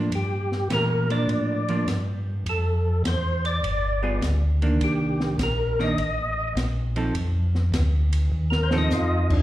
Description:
soul jazz organ trio; 102 BPM; 4/4; swing 67% on 8ths; A4 = 441 Hz
hollow-body jazz guitar; accompaniment; 0.0-9.4 s; Eb3 to A4; -27 LUFS; right 2 dB
mellow tonewheel organ; bass; 0.0-9.4 s; G1 to Bb2; -24 LUFS; equal; slow rotary speaker
percussive tonewheel organ; melody; 0.1-9.4 s; D4 to Eb5; -27 LUFS; left 1 dB; slow rotary speaker, chorus vibrato, slapback echo
open jazz drum kit; drums; 0.1-9.4 s; crash cymbal, hi-hat, kick drum, ride cymbal, snare drum; -31 LUFS; equal
light reverb, studio reverb; live gig heard through the venue's PA, club reverb; -21 LUFS; side -14 dB against mid
0.0-9.4 A section
tonewheel organ solo 0.0-9.4; drum fill 8.3-8.9
0.1 Gm7; 2.5 Dm9; 3.6 G7b9; 4.8 Cm9; 7.1 F7
| 0.12 0.71 1.29 1.88 | 2.46 3.05 3.64 4.22 | 4.81 5.39 5.98 6.56 | 7.15 7.74 8.32 8.91

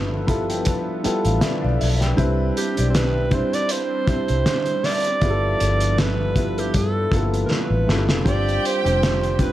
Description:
lush 1970s-style soul; 79 BPM; 4/4; swing 54% on 16ths; A4 = 440 Hz
warm concert grand piano; accompaniment; 0.0-9.5 s; G3 to B5; -25 LUFS; equal
hollow soft pad; sustained chords; 0.0-9.5 s; F3 to E5; -29 LUFS; right 1 dB; chorus
vintage muted fingered electric bass; bass; 0.0-9.5 s; F1 to G2; -22 LUFS; equal
cloth-damped thuddy drum kit; drums; 0.3-9.5 s; hi-hat, kick drum, snare drum; -24 LUFS; equal
clear alto saxophone; melody; 2.6-9.5 s; G4 to D5; -24 LUFS; right 2 dB
rich studio violin section; second line; 8.3-9.4 s; G4 to G5; -28 LUFS; right 1 dB
light reverb; dark, warm production; -18 LUFS; side -14 dB against mid
0.0-8.3 A section; 8.3-9.5 B section
grand piano fill 0.0-2.2; drum fill 7.5-8.3
0.0 G13; 2.2 Cmaj9; 5.2 G13; 8.3 G7sus4
0.67 1.43 | 2.19 2.94 3.70 4.46 | 5.22 5.98 6.74 7.50 | 8.26 9.01

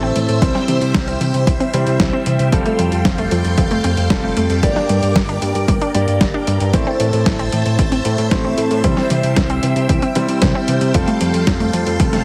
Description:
italo disco; 114 BPM; 4/4; straight; A4 = 440 Hz
string machine, full ensemble; sustained chords; 0.0-12.2 s; A4 to E6; -25 LUFS; equal; phaser, ensemble chorus
unison pluck; arpeggios; 0.0-12.2 s; E3 to D4; -25 LUFS; equal
bright grand piano; stabs; 0.0-12.2 s; G3 to D5; -24 LUFS; equal; delay
fat analog bass; bass; 0.0-12.2 s; F1 to C3; -22 LUFS; equal; tube saturation
dusty soul sampler-style drum kit; drums; 0.2-12.2 s; hi-hat, snare drum; -25 LUFS; equal; overdrive
electronic kick drum; drums; 0.4-12.1 s; -21 LUFS; equal; overdrive
light reverb; heavily compressed radio sound, multiband compression; -16 LUFS; mono
0.0-12.2 A section
0.4 C; 2.5 Fadd9; 4.6 Gm; 6.7 Am; 8.8 C; 10.9 Fadd9
| 0.42 0.95 1.47 2.00 | 2.52 3.05 3.58 4.10 | 4.63 5.16 5.68 6.21 | 6.74 7.26 7.79 8.31 | 8.84 9.37 9.89 10.42 | 10.95 11.47 12.00

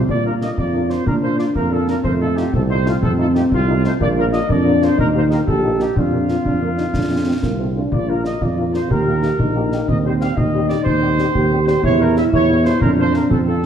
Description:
military-style march for wind band; 122 BPM (dotted quarters); 6/8; straight; Bb major; A4 = 435 Hz
mellow trumpet section; melody; 0.1-13.7 s; F4 to F5; -23 LUFS; left 1 dB
clear euphonium; second line; 0.1-13.7 s; A3 to G4; -21 LUFS; right 1 dB
mellow tuba; bass; 0.1-13.7 s; Bb1 to Bb2; -19 LUFS; right 2 dB
concert bass drum and concert snare drum; drums; 0.1-13.7 s; -23 LUFS; equal
warm French horn section; accompaniment; 0.3-13.7 s; F3 to G4; -26 LUFS; left 4 dB
wet scoring stage reverb, RT60 1.6 s; dark, warm production; -15 LUFS; side -8 dB against mid
0.1-13.7 A section
0.1 Bb; 2.0 F7; 4.0 Bb; 5.0 Eb; 6.0 Bb/F; 6.9 F; 7.9 Bb; 8.9 Eb; 9.9 Cm/Eb; 11.8 Edim7; 12.8 Bb/F
| 0.08 0.57 | 1.06 1.55 | 2.04 2.53 | 3.02 3.51 | 4.00 4.49 | 4.98 5.47 | 5.96 6.45 | 6.94 7.43 | 7.92 8.41 | 8.90 9.39 | 9.88 10.37 | 10.86 11.35 | 11.84 12.33 | 12.82 13.30

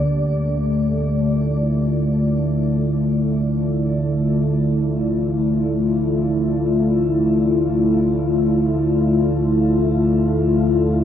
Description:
dark ambient drone; free time; D minor; A4 = 437 Hz
dark analog pad; sustained chords; 0.0-11.0 s; A3 to D5; -18 LUFS; left 2 dB; chorus, shimmer reverb
deep rumbling drone; drone; 0.0-11.0 s; D2 to D3; -21 LUFS; right 2 dB; built-in reverb
wet huge ambient reverb, RT60 8.9 s; dark, warm production; -16 LUFS; side -9 dB against mid
0.1-11.0 A section
0.1 Dmadd9
free time

